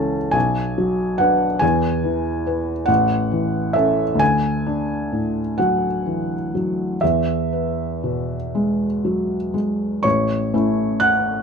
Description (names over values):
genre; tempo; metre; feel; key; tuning
classical, romantic nocturne for solo piano; 39-48 BPM (dotted quarters); 6/8; rubato; A major; A4 = 439 Hz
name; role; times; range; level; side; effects
felt-muted upright piano; solo; 0.0-11.4 s; A1 to F#6; -18 LUFS; equal; none
room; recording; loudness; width
moderate studio ambience, RT60 0.5 s; dark, warm production, nothing above 11.0 kHz; -18 LUFS; side -6 dB against mid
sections
0.0-10.0 A section; 10.0-11.4 B section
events
none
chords
0.3 Bm; 1.6 E; 2.9 A; 4.2 D; 7.0 E; 10.0 A